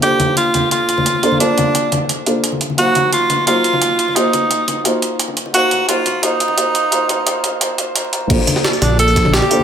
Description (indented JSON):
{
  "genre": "liquid drum and bass",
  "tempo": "174 BPM",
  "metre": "4/4",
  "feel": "straight",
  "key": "Bb major",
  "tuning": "A4 = 440 Hz",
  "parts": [
    { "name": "breathy tenor saxophone", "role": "melody", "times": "0.0-9.6 s", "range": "D4 to A4", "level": "-16 LUFS", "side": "right 1 dB", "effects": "digital delay" },
    { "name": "felt-muted upright piano", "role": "accompaniment", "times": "0.0-9.6 s", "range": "Gb3 to F5", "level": "-20 LUFS", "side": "equal", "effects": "ping-pong delay" },
    { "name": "jungle sampler-style drum kit", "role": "drums", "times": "0.0-9.6 s", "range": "crash cymbal, hi-hat, snare drum, tambourine", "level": "-20 LUFS", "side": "right 2 dB", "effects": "high-pass filter on hats, high-pass filter on snare, high-pass filter on cymbals, high-pass filter on perc, high-pass filter on room" },
    { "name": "congas", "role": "percussion", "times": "0.2-9.6 s", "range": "none", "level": "-24 LUFS", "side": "left 3 dB", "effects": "none" },
    { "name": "dark detuned saw bass", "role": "bass", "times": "8.3-9.4 s", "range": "Bb1", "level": "-16 LUFS", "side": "right 1 dB", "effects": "none" },
    { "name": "electronic kick drum", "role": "drums", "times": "8.3-9.2 s", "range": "none", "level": "-17 LUFS", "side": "equal", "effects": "overdrive" }
  ],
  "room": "wet plate reverb, RT60 1.0 s, digital ambience",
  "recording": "high-pass filter",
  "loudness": "-13 LUFS",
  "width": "side -8 dB against mid",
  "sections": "0.0-8.3 A section; 8.3-9.6 B section",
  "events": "build-up 0.0-8.3; drop 8.3-9.6",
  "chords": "0.0 Bbmaj7; 2.6 Ebm6; 8.3 Bbmaj7"
}